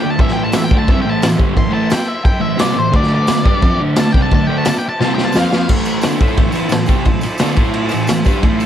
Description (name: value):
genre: garage rock duo or trio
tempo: 175 BPM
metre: 4/4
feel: straight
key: A minor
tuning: A4 = 440 Hz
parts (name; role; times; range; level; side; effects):
- octave-fuzz lead guitar; melody; 0.0-5.7 s; C5 to C6; -20 LUFS; left 2 dB; distortion
- combo organ; sustained chords; 0.0-8.7 s; C4 to D5; -29 LUFS; equal; none
- fuzz guitar; riff; 0.0-8.7 s; G2 to A4; -16 LUFS; right 1 dB; distortion
- raw garage drum kit; drums; 0.2-8.7 s; crash cymbal, kick drum, ride cymbal, snare drum; -15 LUFS; equal; none
- tambourine; percussion; 0.5-8.7 s; none; -34 LUFS; right 8 dB; none
room: little or no reverb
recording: none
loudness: -12 LUFS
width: side -10 dB against mid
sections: 0.0-5.7 A section; 5.7-8.7 B section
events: lead electric guitar solo 0.0-5.7; drum fill 5.0-5.7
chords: 0.2 Am; 2.9 D5; 5.0 C5; 5.3 F5; 5.7 Am